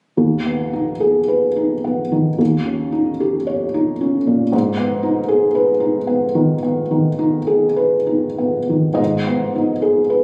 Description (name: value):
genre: classical, romantic nocturne for solo piano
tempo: 48-59 BPM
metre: 4/4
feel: rubato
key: G# minor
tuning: A4 = 440 Hz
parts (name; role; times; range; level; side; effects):
- felt-muted upright piano; solo; 0.2-10.2 s; D#2 to D#5; -18 LUFS; equal; none
room: moderate recital hall reverb, RT60 1.6 s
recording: recorded on a phone in the room, club reverb, nothing above 10.7 kHz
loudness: -18 LUFS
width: mono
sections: 0.2-9.0 A section; 9.0-10.2 B section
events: none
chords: 0.2 G#m/D#; 2.4 D#7; 4.5 G#m